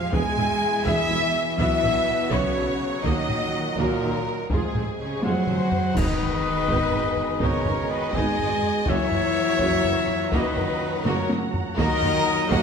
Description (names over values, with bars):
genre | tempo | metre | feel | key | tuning
cinematic, epic orchestral film score | 82 BPM (dotted quarters) | 6/8 | straight | G# minor | A4 = 440 Hz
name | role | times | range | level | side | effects
dark symphonic violin section | melody | 0.0-12.6 s | Ab4 to G#5 | -31 LUFS | left 4 dB | none
rich symphonic violin section | second line | 0.0-12.6 s | Ab4 to G#5 | -32 LUFS | left 2 dB | none
dark symphonic string section | sustained chords | 0.0-12.6 s | A#3 to A#5 | -35 LUFS | equal | none
mellow French horn section | sustained chords | 0.0-12.6 s | Ab3 to G#4 | -30 LUFS | left 6 dB | none
warm trombone section | sustained chords | 0.0-12.6 s | A#2 to Ab3 | -34 LUFS | right 4 dB | none
dark trumpet section | stabs | 0.0-12.6 s | Ab4 to G#5 | -28 LUFS | left 1 dB | none
rich symphonic cello section | bass | 0.0-12.6 s | Ab2 to G#3 | -30 LUFS | right 2 dB | none
warm symphonic viola section | accompaniment | 0.1-12.6 s | F3 to G#4 | -32 LUFS | equal | none
dark tuba | bass | 0.1-12.6 s | E1 to D#2 | -32 LUFS | right 4 dB | none
warm symphonic double bass section | bass | 0.1-12.6 s | F#1 to F2 | -33 LUFS | right 4 dB | none
taiko ensemble | drums | 0.1-12.6 s | none | -29 LUFS | equal | none
cymbal swell, clash cymbals and concert bass drum | percussion | 3.1-6.9 s | none | -33 LUFS | equal | none
silver concert flute | second line | 5.0-12.6 s | Ab4 to D#5 | -33 LUFS | left 4 dB | none
room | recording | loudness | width
wet concert hall reverb, RT60 1.9 s | none | -21 LUFS | side -6 dB against mid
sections
0.0-6.0 A section; 6.0-12.6 B section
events
drum fill 5.2-6.0, 11.1-11.8; band accent 6.0-6.4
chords
0.1 E; 1.6 B5; 3.0 D#m; 4.5 Fm; 6.0 G#m; 8.9 F#; 11.8 D#m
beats
| 0.14 0.87 | 1.59 2.32 | 3.05 3.78 | 4.50 5.23 | 5.96 6.69 | 7.42 8.14 | 8.87 9.60 | 10.33 11.06 | 11.79 12.52